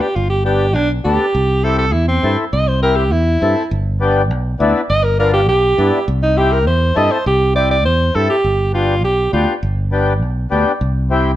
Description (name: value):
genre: latin, cumbia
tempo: 203 BPM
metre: 4/4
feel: straight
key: C major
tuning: A4 = 440 Hz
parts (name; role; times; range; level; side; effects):
- bright alto saxophone; melody; 0.0-9.5 s; C4 to Eb5; -16 LUFS; right 1 dB; none
- mellow accordion; accompaniment; 0.0-11.3 s; B3 to A4; -19 LUFS; left 3 dB; none
- fingered electric bass; bass; 0.2-11.4 s; G1 to G2; -17 LUFS; equal; none
room: light reverb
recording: dark, warm production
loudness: -13 LUFS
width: side -13 dB against mid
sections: 0.0-7.3 A section; 7.3-11.4 B section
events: alto saxophone solo 0.0-7.3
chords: 0.0 G; 1.3 C; 3.7 G7; 6.1 C; 8.4 G7; 10.8 C